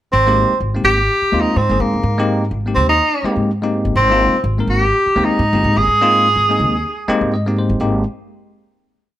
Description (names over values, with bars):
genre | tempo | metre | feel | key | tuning
electric jazz fusion | 125 BPM | 4/4 | swing 56% on 16ths | Ab major | A4 = 439 Hz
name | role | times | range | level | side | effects
clear tenor saxophone | melody | 0.1-7.3 s | Bb3 to Ab4 | -15 LUFS | right 1 dB | slapback echo, plate reverb
upright bass | bass | 0.1-8.0 s | G1 to Ab2 | -19 LUFS | equal | none
bell-like tine electric piano | accompaniment | 0.3-8.0 s | Ab3 to G5 | -19 LUFS | left 1 dB | medium stereo tremolo, plate reverb
room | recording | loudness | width
moderate club reverb, RT60 0.8 s | none | -13 LUFS | side -13 dB against mid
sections
0.1-7.8 groove; 7.8-9.2 final chord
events
tine electric piano fill 6.8-7.8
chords
0.1 Abmaj9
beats
| 0.13 0.61 1.09 1.56 | 2.04 2.52 3.00 3.48 | 3.96 4.44 4.92 5.40 | 5.88 6.36 6.84 7.32 | 7.80